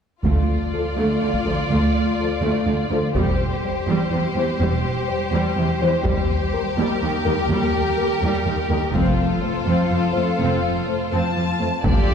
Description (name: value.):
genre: cinematic, epic orchestral film score.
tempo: 83 BPM (dotted quarters).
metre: 6/8.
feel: straight.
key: D minor.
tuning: A4 = 439 Hz.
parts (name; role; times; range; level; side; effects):
warm symphonic violin section; melody; 0.2-12.1 s; A4 to A5; -29 LUFS; left 3 dB; none.
clear symphonic violin section; second line; 0.2-12.1 s; F4 to A4; -26 LUFS; left 3 dB; none.
rich symphonic cello section; bass; 0.2-12.1 s; D2 to G4; -23 LUFS; right 2 dB; none.
taiko ensemble; drums; 0.2-12.1 s; none; -25 LUFS; equal; none.
warm symphonic viola section; accompaniment; 0.3-12.1 s; C3 to D4; -26 LUFS; right 1 dB; none.
warm symphonic double bass section; bass; 0.3-12.1 s; E1 to Eb2; -26 LUFS; right 1 dB; none.
mellow French horn section; sustained chords; 0.7-11.7 s; F3 to C5; -28 LUFS; left 3 dB; none.
room: wet scoring stage reverb, RT60 2.1 s.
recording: heard from further back in the room.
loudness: -18 LUFS.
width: side -7 dB against mid.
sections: 0.3-11.9 A section.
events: build-up 0.3-11.9.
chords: 0.3 Dm; 3.2 C/E; 6.1 Eb; 9.0 F.